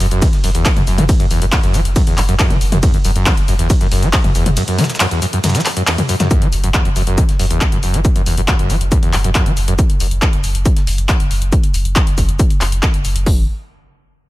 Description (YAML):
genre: driving peak-time techno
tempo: 138 BPM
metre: 4/4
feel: straight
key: unclear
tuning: A4 = 438 Hz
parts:
  - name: screaming distorted acid line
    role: riff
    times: 0.0-9.7 s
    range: E2 to F#3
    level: -19 LUFS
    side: equal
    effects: distortion, wide subtle chorus, sidechain pumping, ping-pong delay
  - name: warm sub bass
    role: bass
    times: 0.0-13.5 s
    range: F#1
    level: -18 LUFS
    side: equal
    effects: overdrive, sidechain pumping, low-pass filter
  - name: dusty soul sampler-style drum kit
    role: drums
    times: 0.0-13.3 s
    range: hi-hat, shaker, snare drum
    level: -29 LUFS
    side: equal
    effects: none
  - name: punchy analog drum machine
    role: drums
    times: 0.0-13.2 s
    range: handclaps, hi-hat, ride cymbal, toms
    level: -19 LUFS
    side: left 1 dB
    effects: overdrive, sidechain pumping on hats, sidechain pumping on cymbals, sidechain pumping on toms
  - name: techno drum kit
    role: drums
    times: 0.2-13.4 s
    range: hi-hat, kick drum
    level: -14 LUFS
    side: equal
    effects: overdrive
room: little or no reverb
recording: none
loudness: -12 LUFS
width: side -17 dB against mid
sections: 0.0-6.3 A section; 6.3-13.3 B section; 13.3-14.3 C section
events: drop 0.0-6.3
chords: none